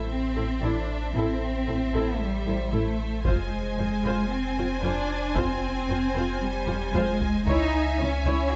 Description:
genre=cinematic, hybrid orchestral and electronic film score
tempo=114 BPM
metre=4/4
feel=straight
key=unclear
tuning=A4 = 442 Hz
part: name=clear symphonic violin section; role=second line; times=0.0-8.6 s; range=C5 to Ab5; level=-36 LUFS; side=equal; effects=none
part: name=dark symphonic viola section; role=accompaniment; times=0.0-8.5 s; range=E4 to C#5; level=-34 LUFS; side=equal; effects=none
part: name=pure sine sub bass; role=bass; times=0.0-8.6 s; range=F1 to C#2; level=-34 LUFS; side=equal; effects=none
part: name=warm symphonic cello section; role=bass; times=0.0-8.6 s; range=G3 to G#4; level=-31 LUFS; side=equal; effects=none
part: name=impact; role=sound effects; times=0.1-1.1 s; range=none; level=barely audible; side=none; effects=none
part: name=warm symphonic double bass section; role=bass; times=0.4-8.3 s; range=A1 to F2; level=-35 LUFS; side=equal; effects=none
part: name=taiko ensemble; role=drums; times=3.2-8.0 s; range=none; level=-34 LUFS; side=equal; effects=none
room=light reverb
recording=nothing above 7.9 kHz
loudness=-27 LUFS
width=mono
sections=0.0-8.6 A section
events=impact 0.0-1.1; drum fill 6.7-7.5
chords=0.0 Am; 3.3 Fm; 7.5 C#m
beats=0.10 0.62 | 1.15 1.67 2.20 2.73 | 3.25 3.78 4.30 4.83 | 5.36 5.88 6.41 6.94 | 7.46 7.99 8.52

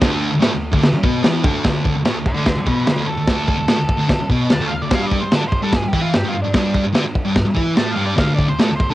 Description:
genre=garage rock duo or trio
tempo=147 BPM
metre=4/4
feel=straight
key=unclear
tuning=A4 = 440 Hz
part: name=thick fuzz guitar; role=riff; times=0.0-8.9 s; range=D2 to E4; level=-18 LUFS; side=equal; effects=distortion, cassette tape
part: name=crunchy breakbeat drum kit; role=drums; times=0.0-8.9 s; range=crash cymbal, kick drum, snare drum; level=-18 LUFS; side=equal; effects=cassette tape
part: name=octave-fuzz lead guitar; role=melody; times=2.3-8.9 s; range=D4 to A5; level=-25 LUFS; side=equal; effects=distortion, cassette tape
room=small room ambience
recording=home recording on cassette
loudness=-15 LUFS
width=side -15 dB against mid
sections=0.0-1.6 A section; 1.6-8.9 B section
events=lead electric guitar solo 1.6-8.9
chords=0.0 D5; 4.9 G5; 8.2 D5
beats=| 0.02 0.43 0.83 1.24 | 1.65 2.05 2.46 2.87 | 3.27 3.68 4.09 4.50 | 4.91 5.32 5.72 6.13 | 6.54 6.95 7.36 7.77 | 8.18 8.59

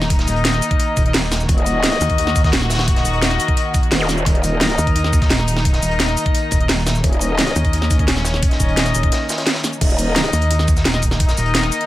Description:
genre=dark technical drum and bass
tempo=173 BPM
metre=4/4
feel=straight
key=Eb minor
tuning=A4 = 441 Hz
part: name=dark studio string section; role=sustained chords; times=0.0-11.9 s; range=Eb3 to Gb4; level=-24 LUFS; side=left 1 dB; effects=sidechain pumping
part: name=pulsing pluck wobble bass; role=bass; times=0.0-11.7 s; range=Eb1 to Eb2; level=-19 LUFS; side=equal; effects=chorus
part: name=crunchy breakbeat drum kit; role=drums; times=0.0-11.8 s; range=hi-hat, snare drum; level=-28 LUFS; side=equal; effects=high-pass filter on hats, high-pass filter on snare, high-pass filter on room
part: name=drum and bass drum kit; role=drums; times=0.0-11.9 s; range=crash cymbal, hi-hat, shaker, snare drum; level=-20 LUFS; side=right 1 dB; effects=none
part: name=electronic kick drum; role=drums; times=0.1-11.3 s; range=none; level=-17 LUFS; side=equal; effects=none
part: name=mellow brass ensemble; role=stabs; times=0.2-11.9 s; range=Eb4 to Eb5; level=-23 LUFS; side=left 4 dB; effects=digital delay
part: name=growl bass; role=bass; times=1.5-4.8, 7.0-7.5, 9.8-10.3 s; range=Eb1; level=-20 LUFS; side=equal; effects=chorus, overdrive, sidechain pumping
part: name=zap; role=sound effects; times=4.0-4.1 s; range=none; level=-27 LUFS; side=equal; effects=none
room=small room ambience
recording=none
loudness=-14 LUFS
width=side -15 dB against mid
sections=0.0-9.8 A section; 9.8-11.9 A section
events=drop 0.0-9.8, 9.8-11.9; break 9.1-9.8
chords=0.0 Eb5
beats=| 0.10 0.45 0.80 1.14 | 1.49 1.84 2.18 2.53 | 2.88 3.22 3.57 3.92 | 4.26 4.61 4.96 5.30 | 5.65 6.00 6.34 6.69 | 7.04 7.39 7.73 8.08 | 8.43 8.77 9.12 9.47 | 9.81 10.16 10.51 10.85 | 11.20 11.55

